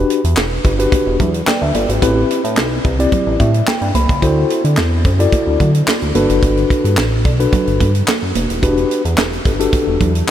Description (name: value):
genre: early-eighties boogie funk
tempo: 109 BPM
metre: 4/4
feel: straight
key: E minor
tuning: A4 = 443 Hz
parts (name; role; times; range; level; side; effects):
- mellow tine electric piano; accompaniment; 0.0-10.3 s; C4 to B5; -17 LUFS; left 2 dB; medium stereo tremolo
- chorused synth bass; bass; 0.0-10.2 s; D#1 to D3; -16 LUFS; equal; none
- tight funk drum kit; drums; 0.1-10.3 s; handclaps, hi-hat, kick drum, snare drum; -18 LUFS; equal; none
- congas; percussion; 0.4-10.3 s; none; -24 LUFS; right 5 dB; none
room: moderate huge ambient reverb, RT60 7.3 s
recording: dreamy mix soaked in reverb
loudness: -12 LUFS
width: side -10 dB against mid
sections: 0.0-10.3 A section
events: tine electric piano fill 3.1-4.2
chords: 0.0 Em7; 2.0 Am7; 4.2 D7; 6.2 Gmaj7; 8.6 Em7